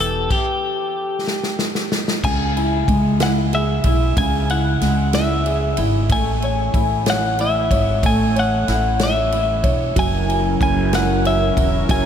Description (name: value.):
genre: six-eight pop ballad.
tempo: 62 BPM (dotted quarters).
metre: 6/8.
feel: straight.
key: unclear.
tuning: A4 = 439 Hz.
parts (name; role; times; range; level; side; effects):
twelve-string electric guitar; melody; 0.0-12.1 s; G4 to G#5; -22 LUFS; left 1 dB; ping-pong delay.
warm concert grand piano; accompaniment; 0.0-12.1 s; C#3 to C#5; -24 LUFS; right 2 dB; analog chorus.
chorused pulse-width pad; sustained chords; 0.0-0.3, 10.0-12.1 s; F#3 to E6; -24 LUFS; right 1 dB; none.
upright bass; bass; 0.0-12.1 s; E1 to C#2; -21 LUFS; equal; none.
natural country drum kit; drums; 0.3-12.0 s; crash cymbal, kick drum, ride cymbal, snare drum; -22 LUFS; equal; none.
room: moderate cathedral reverb, RT60 5.0 s.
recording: dreamy mix soaked in reverb.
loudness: -16 LUFS.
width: side -8 dB against mid.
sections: 0.0-2.2 A section; 2.2-12.1 B section.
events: drum fill 1.3-2.2.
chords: 0.0 Em; 2.2 C#m; 6.1 Amaj7; 10.0 F#7.